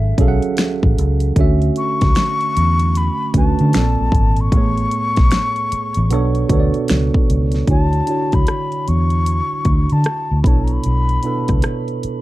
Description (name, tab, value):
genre	R&B, neo-soul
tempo	76 BPM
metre	4/4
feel	swing 62% on 16ths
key	unclear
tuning	A4 = 441 Hz
part	breathy mellow concert flute	melody	0.0-11.5 s	E5 to C#6	-22 LUFS	left 3 dB	plate reverb, tape echo
part	tine electric piano	accompaniment	0.0-12.2 s	A2 to F#5	-21 LUFS	right 4 dB	phaser
part	vintage muted fingered electric bass	bass	0.0-12.1 s	G#1 to D3	-16 LUFS	equal	none
part	pop drum kit	drums	0.2-12.2 s	finger snaps, hi-hat, kick drum, rim click, snare drum	-17 LUFS	equal	none
room	little or no reverb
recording	dark, warm production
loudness	-14 LUFS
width	side -16 dB against mid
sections	0.0-7.7 A section; 7.7-12.2 B section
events	none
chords	0.0 F#m9; 1.4 Dmaj9; 3.7 A#maj7; 4.5 Amaj7; 6.1 Bm9; 7.7 Dmaj9; 10.4 Bm11